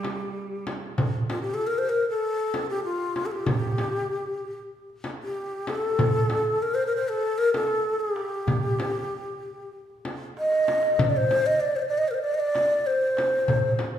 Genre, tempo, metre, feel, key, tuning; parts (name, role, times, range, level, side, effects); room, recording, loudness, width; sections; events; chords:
Turkish makam ensemble; 96 BPM; 4/4; straight; G makam ussak; A4 = 442 Hz
breathy mellow ney; melody; 0.0-13.8 s; F4 to Eb5; -24 LUFS; left 1 dB
Greek bouzouki; second line; 0.0-0.6 s; barely audible
clear cello; second line; 0.0-0.7 s; G3; -38 LUFS; right 8 dB
darbuka; percussion; 0.0-13.9 s; -31 LUFS; right 3 dB
frame drum; percussion; 0.0-13.9 s; -30 LUFS; left 2 dB
wet recital hall reverb, RT60 1.6 s; recorded in a church or concert hall; -23 LUFS; side -10 dB against mid
1.0-14.0 A section
drum fill 10.4-11.0